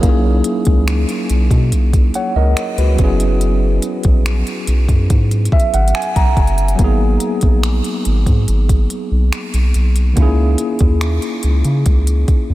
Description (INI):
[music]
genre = contemporary R&B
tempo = 71 BPM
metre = 4/4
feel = straight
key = C# dorian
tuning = A4 = 445 Hz
[part]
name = tine electric piano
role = accompaniment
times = 0.0-12.5 s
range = D#3 to A#5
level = -19 LUFS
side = equal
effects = medium stereo tremolo
[part]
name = round analog bass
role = bass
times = 0.0-12.5 s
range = F#1 to C#3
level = -14 LUFS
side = equal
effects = none
[part]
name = smooth R&B drum kit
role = drums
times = 0.0-12.5 s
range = finger snaps, hi-hat, kick drum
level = -17 LUFS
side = equal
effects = none
[sound]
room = light reverb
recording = none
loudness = -12 LUFS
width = side -16 dB against mid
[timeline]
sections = 0.0-12.5 A section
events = tine electric piano fill 5.1-6.8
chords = 0.0 Bmaj13; 3.0 F#9sus4; 6.8 G#m9; 10.2 C#m69